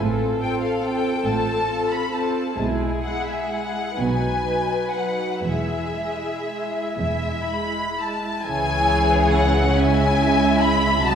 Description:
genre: classical, slow romantic movement for string orchestra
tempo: 39-48 BPM (dotted quarters)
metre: 6/8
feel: rubato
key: E major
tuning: A4 = 441 Hz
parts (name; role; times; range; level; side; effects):
- muted studio violin section; second line; 0.0-11.2 s; E4 to E5; -26 LUFS; left 3 dB; none
- muted studio viola section; accompaniment; 0.0-11.2 s; E3 to F4; -26 LUFS; right 3 dB; none
- muted studio cello section; bass; 0.0-11.2 s; E2 to C#3; -27 LUFS; right 3 dB; none
- muted studio double bass section; bass; 0.0-11.2 s; E1 to C#2; -26 LUFS; right 1 dB; none
- muted symphonic violin section; melody; 0.4-11.2 s; E5 to B5; -24 LUFS; left 3 dB; none
room: wet scoring stage reverb, RT60 1.7 s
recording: heard from further back in the room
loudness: -19 LUFS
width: side -8 dB against mid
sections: 0.0-8.5 A section; 8.5-11.2 B section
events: none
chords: 0.0 F/A; 2.6 E/B; 4.0 B; 5.5 E; 8.5 C#m

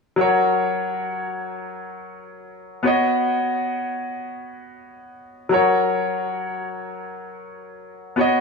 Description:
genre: dancehall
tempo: free time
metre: none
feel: none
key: F# major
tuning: A4 = 442 Hz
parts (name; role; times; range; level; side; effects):
- clear baby grand piano; accompaniment; 0.2-8.4 s; F#3 to D#5; -21 LUFS; left 1 dB; none
room: light reverb, small room ambience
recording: studio ambience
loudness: -20 LUFS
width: side -4 dB against mid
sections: 0.2-8.4 A section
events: none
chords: 0.2 F#; 2.9 Badd9; 5.5 F#

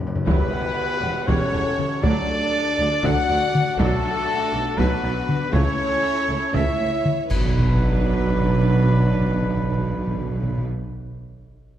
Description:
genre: cinematic, epic orchestral film score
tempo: 239 BPM (eighths)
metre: 7/8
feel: straight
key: B minor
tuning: A4 = 440 Hz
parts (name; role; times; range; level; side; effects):
- timpani; percussion; 0.0-0.2, 3.8-4.5, 7.3-10.7 s; F#2 to B2; -27 LUFS; equal; none
- rich studio violin section; melody; 0.3-10.6 s; A4 to F#5; -33 LUFS; left 2 dB; none
- rich symphonic violin section; second line; 0.3-10.6 s; F#4 to D5; -34 LUFS; left 2 dB; none
- silver concert flute; second line; 0.3-10.6 s; A4 to B5; -30 LUFS; left 2 dB; none
- rich symphonic viola section; accompaniment; 0.3-10.7 s; F#3 to F#5; -32 LUFS; equal; none
- bright trombone section; sustained chords; 0.3-10.7 s; E3 to E4; -34 LUFS; right 5 dB; none
- mellow French horn section; sustained chords; 0.3-10.6 s; A3 to F#4; -30 LUFS; left 2 dB; none
- mellow trumpet; stabs; 0.3-10.7 s; A4 to F#5; -26 LUFS; right 1 dB; none
- rich studio cello section; bass; 0.3-10.7 s; D2 to C#3; -28 LUFS; right 1 dB; none
- rich symphonic double bass section; bass; 0.3-10.7 s; E1 to D2; -27 LUFS; right 2 dB; none
- warm tuba; bass; 0.3-10.7 s; E1 to D2; -29 LUFS; right 3 dB; none
- taiko ensemble; drums; 0.3-7.3 s; none; -25 LUFS; left 1 dB; none
- tam-tam, clash cymbals and concert bass drum; percussion; 0.3-2.2, 7.3-8.3 s; none; -29 LUFS; equal; none
room: wet scoring stage reverb, RT60 1.7 s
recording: dark, warm production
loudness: -19 LUFS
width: side -11 dB against mid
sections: 0.3-7.3 A section; 7.3-10.8 B section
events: break 0.0; timpani fill 0.0; drum fill 0.0; band accent 0.3-0.8, 7.3-7.8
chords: 0.3 Emadd9; 2.0 D; 3.8 Bm; 5.5 A/C#; 7.3 Bm

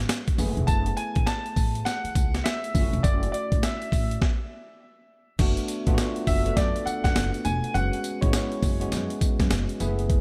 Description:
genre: R&B, new jack swing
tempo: 102 BPM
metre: 4/4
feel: swing 63% on 16ths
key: unclear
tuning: A4 = 440 Hz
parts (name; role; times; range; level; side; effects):
- tine electric piano; accompaniment; 0.0-10.2 s; G#3 to A4; -34 LUFS; equal; lush chorus
- upright bass; bass; 0.0-10.2 s; E1 to F#2; -31 LUFS; equal; none
- breakbeat sampler-style drum kit; drums; 0.1-10.2 s; crash cymbal, hi-hat, kick drum, snare drum, tambourine; -27 LUFS; equal; none
- clear concert grand piano; melody; 0.7-9.1 s; C#5 to A5; -33 LUFS; equal; lush chorus, digital delay
room: light reverb, digital ambience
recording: bright 1980s-style digital production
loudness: -25 LUFS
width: mono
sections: 0.0-5.4 A section; 5.4-10.2 B section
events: stop 4.2-5.4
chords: 0.4 F#m11; 2.7 E13sus4; 5.4 E9sus4/F# (rootless); 7.7 C#7sus4/F#

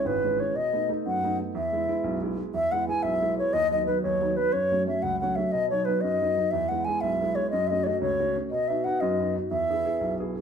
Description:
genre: celtic folk, Celtic jig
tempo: 120 BPM (dotted quarters)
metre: 6/8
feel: straight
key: E major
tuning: A4 = 442 Hz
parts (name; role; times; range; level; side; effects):
- baroque flute; melody; 0.0-10.2 s; B4 to G#5; -25 LUFS; left 1 dB; none
- warm upright piano; accompaniment; 0.0-10.4 s; G#1 to G#4; -29 LUFS; right 2 dB; none
room: wet studio reverb, RT60 0.7 s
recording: band playing live in one room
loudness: -24 LUFS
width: side -7 dB against mid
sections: 0.0-2.5 A section; 2.5-10.4 B section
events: none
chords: 0.0 C#m; 0.6 B7; 1.5 E; 3.5 B/D#; 4.5 F#m; 5.5 B; 6.5 E; 7.5 F#m; 8.5 B; 9.5 E

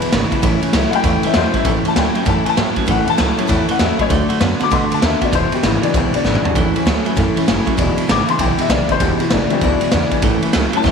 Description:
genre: rockabilly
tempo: 196 BPM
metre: 4/4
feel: swing 64% on 8ths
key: A major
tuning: A4 = 440 Hz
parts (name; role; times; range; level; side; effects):
- picked steel-string acoustic guitar; accompaniment; 0.0-10.9 s; E2 to F#4; -23 LUFS; left 10 dB; none
- warm upright piano; accompaniment; 0.0-10.9 s; E3 to D6; -20 LUFS; left 10 dB; none
- clean electric guitar; riff; 0.0-10.9 s; E2 to B3; -20 LUFS; right 11 dB; none
- upright bass; bass; 0.0-10.9 s; E1 to B2; -21 LUFS; equal; none
- raw garage drum kit; drums; 0.0-10.9 s; kick drum, ride cymbal, snare drum, toms; -19 LUFS; equal; none
room: moderate echo chamber reverb, RT60 1.6 s, studio reverb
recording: 1960s-style stereo with parts hard left and right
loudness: -14 LUFS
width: side -6 dB against mid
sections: 0.0-1.7 A section; 1.7-10.9 A section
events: upright piano solo 0.0-10.9; drum fill 6.2-6.6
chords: 0.4 A; 4.1 D; 5.3 E7; 6.6 A; 7.8 E7; 10.2 A

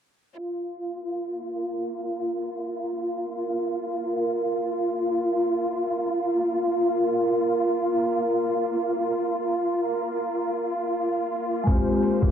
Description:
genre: trip hop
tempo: free time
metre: none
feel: none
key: unclear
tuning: A4 = 439 Hz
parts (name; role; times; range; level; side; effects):
- rich symphonic violin section; sustained chords; 0.4-12.3 s; F4 to C5; -25 LUFS; equal; none
- backwards swelling texture; texture; 1.4-12.3 s; Bb3 to Bb4; -30 LUFS; right 2 dB; built-in reverb
- vibraphone with medium hard mallets; accompaniment; 11.6-12.3 s; Ab3 to G4; -22 LUFS; left 2 dB; tremolo
- trip hop sampler-style drum kit; drums; 11.7-12.3 s; hi-hat, kick drum; -21 LUFS; equal; studio ambience
- tube shaker; percussion; 11.7-12.3 s; none; -60 LUFS; right 1 dB; none
room: light reverb, studio ambience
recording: played on a big sound system in a bare room, stone room reverb, low-pass filter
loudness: -23 LUFS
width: side -8 dB against mid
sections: 0.4-12.3 A section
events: filter sweep 0.4-12.3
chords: 0.4 Bb5; 11.7 Fmadd9

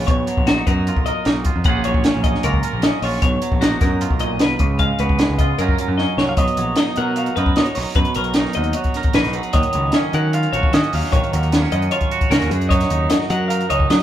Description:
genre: math rock and midwest emo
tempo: 152 BPM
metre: 4/4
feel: straight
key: unclear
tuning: A4 = 440 Hz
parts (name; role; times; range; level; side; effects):
- twangy electric guitar; accompaniment; 0.0-14.0 s; F#2 to A#4; -24 LUFS; right 5 dB; none
- twelve-string electric guitar; arpeggios; 0.0-14.0 s; F#4 to F#5; -24 LUFS; left 3 dB; none
- growling picked electric bass; bass; 0.0-14.0 s; A#1 to F#3; -22 LUFS; equal; overdrive
- compact cocktail drum kit; drums; 0.1-14.0 s; hi-hat, kick drum, snare drum; -19 LUFS; equal; none
- electric guitar through a small old amp; melody; 6.3-14.0 s; C#5 to F#5; -24 LUFS; right 1 dB; none
room: light reverb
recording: band playing live in one room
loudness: -16 LUFS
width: side -11 dB against mid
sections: 0.0-6.4 A section; 6.4-14.0 B section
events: drum fill 6.0-6.4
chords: 0.1 Bmaj9#11; 1.6 D#m11/A#; 3.2 Bmaj9#11; 4.6 C#9; 5.6 F#maj7; 6.4 Bmaj9; 9.5 D#m9; 12.5 F#69

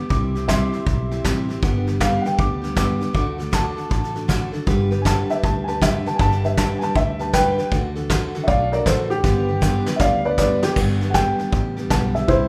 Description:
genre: honky-tonk and classic country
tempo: 158 BPM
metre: 4/4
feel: swing 65% on 8ths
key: G major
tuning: A4 = 440 Hz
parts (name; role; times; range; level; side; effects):
- picked steel-string acoustic guitar; accompaniment; 0.0-12.5 s; G2 to B4; -26 LUFS; equal; none
- warm upright piano; second line; 0.1-10.8 s; G4 to D6; -25 LUFS; equal; none
- fingered electric bass; bass; 0.1-12.5 s; G1 to D2; -28 LUFS; equal; none
- soft brush drum kit; drums; 0.1-12.4 s; crash cymbal, hi-hat, kick drum, snare drum; -25 LUFS; equal; none
- felt-muted upright piano; melody; 11.1-12.5 s; E4 to A5; -23 LUFS; equal; none
room: moderate recital hall reverb, RT60 1.5 s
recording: none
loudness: -20 LUFS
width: mono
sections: 0.0-10.8 A section; 10.8-12.5 A section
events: upright piano solo 0.0-10.8; drum fill 9.2-10.8; felt piano solo 10.8-12.5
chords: 0.1 C; 1.6 G; 3.2 D; 4.7 G; 7.7 D; 9.2 G

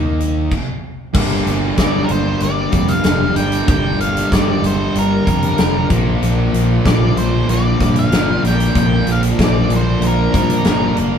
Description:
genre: classic rock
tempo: 95 BPM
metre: 4/4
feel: straight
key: G minor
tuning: A4 = 440 Hz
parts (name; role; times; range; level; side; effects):
- fingerpicked twelve-string acoustic guitar; accompaniment; 0.0-11.2 s; G2 to Bb4; -27 LUFS; left 5 dB; none
- sludgy distorted guitar; riff; 0.0-11.2 s; G2 to Bb4; -22 LUFS; right 1 dB; overdrive
- fingered electric bass; bass; 0.0-11.2 s; F1 to G2; -19 LUFS; equal; none
- big rock drum kit; drums; 0.2-11.1 s; crash cymbal, hi-hat, kick drum, snare drum; -19 LUFS; equal; none
- string machine, cellos; sustained chords; 2.2-11.2 s; D4 to D5; -32 LUFS; right 1 dB; none
- thick fuzz guitar; riff; 1.1-11.2 s; G2 to Bb3; -20 LUFS; equal; distortion
- octave-fuzz lead guitar; melody; 1.8-11.0 s; Bb4 to G5; -22 LUFS; equal; distortion
room: moderate studio reverb, RT60 0.8 s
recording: band playing live in one room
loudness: -13 LUFS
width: side -8 dB against mid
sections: 0.0-1.1 A section; 1.1-11.2 B section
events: stop 0.5-1.1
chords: 0.0 Eb5; 0.5 N.C.; 1.1 Gm; 5.9 Bb

